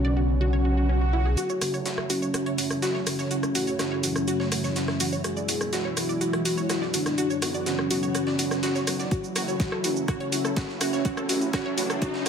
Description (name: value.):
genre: melodic techno.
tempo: 124 BPM.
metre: 4/4.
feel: straight.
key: F# minor.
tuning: A4 = 442 Hz.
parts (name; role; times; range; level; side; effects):
wide unison lead; melody; 0.0-12.3 s; C#4 to G#4; -28 LUFS; equal; sidechain pumping, digital delay.
lush unison pad; sustained chords; 0.0-12.3 s; B2 to F#4; -34 LUFS; right 1 dB; chorus, phaser, sidechain pumping.
wide unison pluck; arpeggios; 0.0-12.3 s; C#4 to D5; -30 LUFS; equal; cassette tape, sidechain pumping, tape echo.
dark detuned saw bass; bass; 0.0-12.3 s; E1 to B1; -29 LUFS; equal; sidechain pumping, high-pass filter.
swell and riser; sound effects; 0.6-1.4, 10.3-12.3 s; none; -36 LUFS; right 3 dB; none.
analog drone; drone; 2.8-12.3 s; F#2 to E3; -38 LUFS; left 1 dB; chorus, phaser, sidechain pumping.
breakbeat sampler-style drum kit; drums; 1.4-12.3 s; hi-hat, snare drum; -37 LUFS; equal; sidechain pumping on hats, high-pass filter on hats, high-pass filter on snare, high-pass filter on room.
house drum kit; drums; 1.4-12.3 s; hi-hat, rim click, shaker; -30 LUFS; right 1 dB; none.
electronic kick drum; drums; 9.1-12.1 s; none; -27 LUFS; equal; none.
room: moderate lush hall reverb, RT60 1.6 s.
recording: high-pass filter.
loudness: -23 LUFS.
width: side -7 dB against mid.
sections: 0.0-1.4 A section; 1.4-12.3 B section.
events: filter sweep on analog synth pad 0.0-1.4; swell 0.6-1.4; build-up 1.4-12.3; filter sweep on analog synth lead 1.4-12.3; riser 10.3-12.3.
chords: 0.0 Bm; 1.4 F#m7; 3.3 A6; 5.2 E; 7.2 Bm; 9.1 F#m7; 11.1 A6.